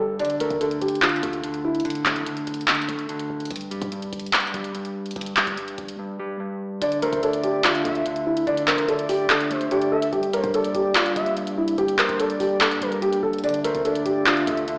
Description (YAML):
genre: hip hop, trap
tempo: 145 BPM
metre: 4/4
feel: half-time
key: D minor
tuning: A4 = 440 Hz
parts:
  - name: dark concert grand piano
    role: melody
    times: 0.0-1.8, 6.8-14.8 s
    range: E4 to D5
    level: -26 LUFS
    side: equal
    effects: digital delay
  - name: mellow electric guitar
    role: accompaniment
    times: 0.0-14.8 s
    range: G2 to A3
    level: -31 LUFS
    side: equal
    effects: none
  - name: short 808-style bass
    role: bass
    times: 0.0-14.8 s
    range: D1 to A2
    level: -41 LUFS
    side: equal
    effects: none
  - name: trap drum kit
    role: drums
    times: 0.2-14.8 s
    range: handclaps, hi-hat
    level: -26 LUFS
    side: equal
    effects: overdrive
  - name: glass harmonica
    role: sustained chords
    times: 6.8-14.8 s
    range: G3 to E5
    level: -34 LUFS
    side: equal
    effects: none
  - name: gliding portamento lead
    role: second line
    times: 7.0-14.7 s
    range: Bb4 to E5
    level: -32 LUFS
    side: equal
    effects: chorus, phaser, digital delay
room: moderate lush hall reverb, RT60 1.6 s, digital ambience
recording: played on a big sound system in a bare room, large studio reverb, AM radio sound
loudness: -23 LUFS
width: mono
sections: 0.0-6.8 A section; 6.8-14.8 B section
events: break 0.0, 1.9-6.8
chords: 0.2 D5; 3.5 N.C.; 6.8 Dmadd9; 10.1 Gm; 13.4 Dmadd9